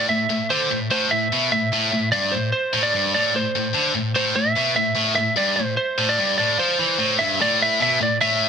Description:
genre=rock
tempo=148 BPM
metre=4/4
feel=straight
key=A minor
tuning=A4 = 440 Hz
part: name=lightly driven lead guitar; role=melody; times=0.0-8.5 s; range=C5 to E5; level=-21 LUFS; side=right 2 dB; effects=tape echo
part: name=heavy high-gain guitar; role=riff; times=0.0-8.5 s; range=G2 to F3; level=-20 LUFS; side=left 2 dB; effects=distortion
room=light reverb, digital ambience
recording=dense, heavily limited modern master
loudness=-18 LUFS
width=side -7 dB against mid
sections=0.0-7.4 A section; 7.4-8.5 B section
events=none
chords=0.0 Am; 7.4 A5

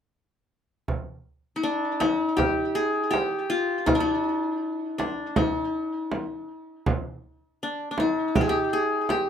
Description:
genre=Arabic maqam ensemble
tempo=80 BPM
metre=4/4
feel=straight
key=unclear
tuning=A4 = 439 Hz
part: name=frame drum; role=percussion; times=0.9-9.3 s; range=none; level=-26 LUFS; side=right 2 dB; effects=none
part: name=qanun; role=melody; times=1.6-9.3 s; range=D4 to Ab4+20c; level=-24 LUFS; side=left 2 dB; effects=tape echo
room=moderate small room reverb, RT60 0.6 s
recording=none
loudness=-23 LUFS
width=side -8 dB against mid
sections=0.9-9.3 A section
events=none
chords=none

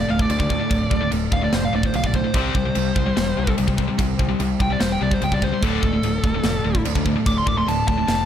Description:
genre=heavy metal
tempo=146 BPM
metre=4/4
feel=straight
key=D minor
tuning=A4 = 440 Hz
part: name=dark smooth lead guitar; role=melody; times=0.0-8.3 s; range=A4 to D6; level=-25 LUFS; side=equal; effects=overdrive, ping-pong delay
part: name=dark studio string section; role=sustained chords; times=0.0-8.3 s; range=E3 to D5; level=-35 LUFS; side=left 1 dB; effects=none
part: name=sludgy distorted guitar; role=riff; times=0.0-8.3 s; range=D2 to C4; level=-26 LUFS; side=right 10 dB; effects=overdrive
part: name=tight distorted guitar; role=riff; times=0.0-8.3 s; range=D2 to C4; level=-25 LUFS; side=left 10 dB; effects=distortion
part: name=modern bright picked electric bass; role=bass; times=0.0-8.2 s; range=D1 to D2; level=-25 LUFS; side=equal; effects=none
part: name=tight metal drum kit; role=drums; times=0.2-8.2 s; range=china cymbal, kick drum, snare drum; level=-24 LUFS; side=equal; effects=none
room=small room ambience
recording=dark, warm production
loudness=-18 LUFS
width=side -9 dB against mid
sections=0.0-8.3 A section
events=lead electric guitar solo 0.0-8.3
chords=0.0 Dm; 2.3 C; 5.6 Dm

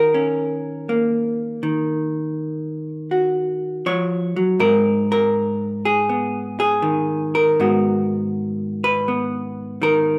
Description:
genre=solo jazz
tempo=80 BPM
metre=4/4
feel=swing 69% on 8ths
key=unclear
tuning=A4 = 440 Hz
part: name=vintage hollow-body jazz guitar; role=solo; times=0.0-10.2 s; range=Ab2 to Db5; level=-20 LUFS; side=equal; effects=none
room=moderate large studio reverb, RT60 1.3 s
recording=none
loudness=-21 LUFS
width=mono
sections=0.0-10.2 A section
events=none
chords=0.0 Ebm7; 4.6 Abm9

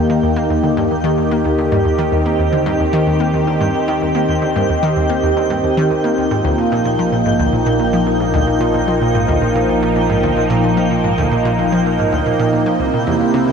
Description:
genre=ambient, sequencer-driven space music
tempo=111 BPM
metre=4/4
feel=straight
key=Eb major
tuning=A4 = 440 Hz
part: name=phased analog pad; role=sustained chords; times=0.0-13.5 s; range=C3 to G4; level=-18 LUFS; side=equal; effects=phaser, chorus, shimmer reverb
part: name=vibraphone with soft mallets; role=arpeggios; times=0.0-13.5 s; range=C4 to F5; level=-19 LUFS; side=right 1 dB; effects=auto-pan, low-pass filter, tape echo, shimmer reverb
part: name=analog drone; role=bass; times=0.0-13.5 s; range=Bb1 to Eb2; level=-25 LUFS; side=equal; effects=chorus
part: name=twinkling granular texture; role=texture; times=0.0-13.5 s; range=G5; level=-27 LUFS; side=left 1 dB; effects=built-in reverb, shimmer reverb
part: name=analog pluck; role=riff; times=0.1-13.5 s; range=C2 to Bb3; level=-19 LUFS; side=equal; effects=chorus, tape echo, shimmer reverb
room=wet huge ambient reverb, RT60 8.0 s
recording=none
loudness=-13 LUFS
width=side -6 dB against mid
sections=0.0-13.5 A section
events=filter sweep on vibraphone 0.0-13.5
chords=0.0 Eb; 6.3 Bbsus4; 12.8 C7

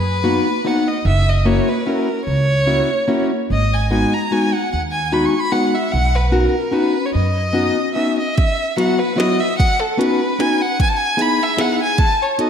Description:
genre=musette waltz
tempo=149 BPM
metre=3/4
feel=swing 54% on 8ths, rubato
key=B major, E major from 8.4 s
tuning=A4 = 439 Hz
part: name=warm violin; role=melody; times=0.0-12.5 s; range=A4 to C#6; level=-20 LUFS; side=equal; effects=tape echo
part: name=upright bass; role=bass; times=0.0-7.7 s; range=F#1 to F#2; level=-18 LUFS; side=right 1 dB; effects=none
part: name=fingerpicked plugged-in steel-string acoustic guitar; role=accompaniment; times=0.2-12.5 s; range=F#3 to A4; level=-19 LUFS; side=left 2 dB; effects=none
part: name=minimal click drum kit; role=drums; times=8.4-12.5 s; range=hi-hat, kick drum, snare drum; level=-19 LUFS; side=right 1 dB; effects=overdrive
room=wet lush hall reverb, RT60 1.7 s, small room ambience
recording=dreamy mix soaked in reverb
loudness=-15 LUFS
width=side -8 dB against mid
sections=0.0-8.4 A section; 8.4-12.5 B section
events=none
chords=0.0 Bmaj7; 1.1 F#7; 3.5 G#m7; 5.9 Badd9; 8.4 Esus2; 9.6 Badd9; 10.8 Emaj7; 12.0 B7

